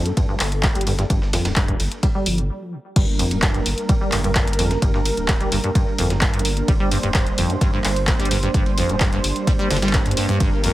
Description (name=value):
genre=acid house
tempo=129 BPM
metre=4/4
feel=straight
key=G minor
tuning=A4 = 440 Hz
part: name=warm analog pad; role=sustained chords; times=0.0-10.7 s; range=G3 to C5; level=-26 LUFS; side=right 2 dB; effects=chorus, sidechain pumping
part: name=acid bass, saw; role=riff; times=0.0-10.7 s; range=F2 to G3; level=-24 LUFS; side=equal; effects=lush chorus, sidechain pumping, digital delay
part: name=punchy analog drum machine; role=drums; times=0.1-10.7 s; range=crash cymbal, handclaps, hi-hat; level=-24 LUFS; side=left 1 dB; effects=none
part: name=breakbeat sampler-style drum kit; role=drums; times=0.2-10.7 s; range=hi-hat, ride cymbal, snare drum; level=-32 LUFS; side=right 1 dB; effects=sidechain pumping on cymbals, high-pass filter on cymbals, high-pass filter on snare, sidechain pumping on hats, high-pass filter on hats
part: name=electronic kick drum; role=drums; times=0.2-10.5 s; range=none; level=-20 LUFS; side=equal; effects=none
part: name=round analog bass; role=bass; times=0.4-10.7 s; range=D1 to G2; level=-25 LUFS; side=equal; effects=sidechain pumping
room=light reverb, digital ambience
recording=heavily compressed radio sound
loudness=-17 LUFS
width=side -16 dB against mid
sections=0.0-3.0 A section; 3.0-10.7 B section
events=stop 2.5-3.0; drop 3.0-10.7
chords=0.0 Gm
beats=0.17 0.64 | 1.10 1.57 2.03 2.50 | 2.96 3.43 3.89 4.36 | 4.82 5.29 5.75 6.22 | 6.68 7.15 7.61 8.08 | 8.54 9.01 9.47 9.94 | 10.40